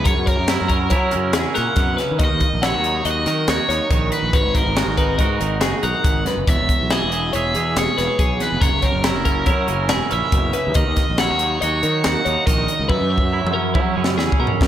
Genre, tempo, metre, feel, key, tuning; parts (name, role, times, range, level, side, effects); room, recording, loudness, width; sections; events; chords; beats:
math rock and midwest emo; 140 BPM; 5/4; straight; A4 = 440 Hz
cranked stack guitar; melody; 0.0-14.6 s; A#4 to F#5; -23 LUFS; equal; overdrive, slapback echo
twangy electric guitar; accompaniment; 0.0-14.7 s; E2 to G#4; -24 LUFS; right 7 dB; spring reverb
twelve-string electric guitar; arpeggios; 0.0-14.7 s; E4 to F#5; -25 LUFS; left 4 dB
fuzz fingered electric bass; bass; 0.0-14.7 s; E1 to F#3; -23 LUFS; equal; overdrive
crisp fusion drum kit; drums; 0.1-14.7 s; hi-hat, kick drum, snare drum, toms; -20 LUFS; equal
moderate concert hall reverb, RT60 2.1 s; big arena sound; -16 LUFS; side -11 dB against mid
0.0-14.7 A section
drum fill 12.9-14.7
0.1 F#7; 2.2 D#m7; 4.3 G#m9; 6.5 E6; 8.6 F#7; 10.8 D#m7; 12.9 F#9sus4
| 0.06 0.49 0.91 1.34 1.77 | 2.20 2.63 3.05 3.48 3.91 | 4.34 4.77 5.20 5.62 6.05 | 6.48 6.91 7.34 7.76 8.19 | 8.62 9.05 9.48 9.90 10.33 | 10.76 11.19 11.62 12.04 12.47 | 12.90 13.33 13.75 14.18 14.61